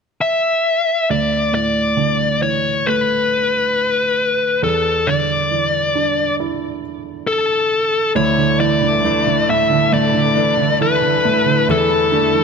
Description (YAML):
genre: pop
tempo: 68 BPM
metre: 4/4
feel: straight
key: unclear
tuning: A4 = 440 Hz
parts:
  - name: bluesy overdriven lead guitar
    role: melody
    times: 0.2-12.4 s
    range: A4 to E5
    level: -16 LUFS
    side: left 3 dB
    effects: distortion
  - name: felt-muted upright piano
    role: accompaniment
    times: 1.1-12.4 s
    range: D2 to E4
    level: -20 LUFS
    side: right 5 dB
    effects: none
  - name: warm studio string section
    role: sustained chords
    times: 8.2-12.4 s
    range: E2 to A4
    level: -23 LUFS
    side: left 1 dB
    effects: none
  - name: fingerpicked steel-string acoustic guitar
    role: arpeggios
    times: 8.2-12.4 s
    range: D3 to E4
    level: -22 LUFS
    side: left 2 dB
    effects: ping-pong delay
room: moderate echo chamber reverb, RT60 1.8 s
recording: none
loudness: -14 LUFS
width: side -5 dB against mid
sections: 0.0-1.1 A section; 1.1-8.2 B section; 8.2-12.4 C section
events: none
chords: 0.0 N.C.; 1.1 Dsus2; 4.6 Asus4/E; 8.2 Dsus2; 11.7 Asus4/E